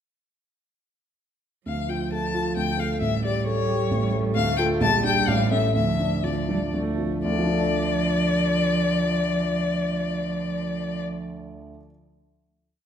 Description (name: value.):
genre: quick classical-period movement for piano trio.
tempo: 118-134 BPM.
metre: 3/4.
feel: straight.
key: D minor.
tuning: A4 = 441 Hz.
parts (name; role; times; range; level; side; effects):
rich violin; melody; 1.7-11.0 s; C#5 to A5; -26 LUFS; left 7 dB; none.
warm cello; second line; 1.7-11.0 s; F3 to A3; -28 LUFS; right 3 dB; none.
dark grand piano; accompaniment; 1.7-11.9 s; A1 to D5; -25 LUFS; right 1 dB; none.
room: wet recital hall reverb, RT60 1.4 s.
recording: minimal, uncompressed stereo recording.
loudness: -21 LUFS.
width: side -8 dB against mid.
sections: 1.7-7.2 A section; 7.2-10.2 final chord.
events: slowing down 3.7-7.2.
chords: 1.7 Dm; 3.0 A7; 4.4 Dm; 4.8 Gm/Bb; 5.3 A7; 5.8 Dm.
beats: | 1.67 2.12 2.57 | 3.02 3.47 3.92 | 4.37 4.82 5.28 | 5.75 6.24 6.74 | 7.25 7.74 8.24 | 8.74 9.25 9.75.